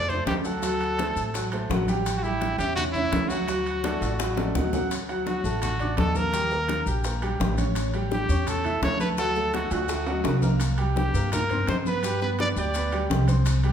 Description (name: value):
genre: latin, salsa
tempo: 168 BPM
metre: 4/4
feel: straight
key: unclear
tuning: A4 = 440 Hz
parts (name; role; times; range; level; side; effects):
- bright trumpet; melody; 0.0-13.1 s; E4 to D5; -28 LUFS; equal; none
- bright concert grand piano; accompaniment; 0.0-13.7 s; F#3 to G6; -30 LUFS; right 1 dB; none
- upright bass; bass; 0.0-13.7 s; A1 to G2; -27 LUFS; equal; none
- congas; percussion; 0.1-13.7 s; none; -32 LUFS; equal; none
- maracas; percussion; 0.1-13.7 s; none; -40 LUFS; left 5 dB; none
- bongos; percussion; 0.3-13.6 s; none; -34 LUFS; left 4 dB; none
- timbales; percussion; 0.3-13.7 s; none; -36 LUFS; right 2 dB; none
room: wet large studio reverb, RT60 1.3 s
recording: band playing live in one room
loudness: -23 LUFS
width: side -8 dB against mid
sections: 0.0-4.9 A section; 4.9-13.7 B section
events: drum fill 4.0-4.9, 9.7-10.6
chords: 0.0 F; 0.6 D7; 2.1 A7; 3.5 D; 6.3 Eb; 7.8 A7; 9.2 D7; 10.6 C5; 12.0 G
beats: 0.27 | 0.63 0.98 1.34 1.70 | 2.06 2.41 2.77 3.13 | 3.48 3.84 4.20 4.55 | 4.91 5.27 5.62 5.98 | 6.33 6.69 7.05 7.40 | 7.76 8.12 8.47 8.83 | 9.19 9.54 9.90 10.25 | 10.61 10.97 11.32 11.68 | 12.04 12.39 12.75 13.11 | 13.46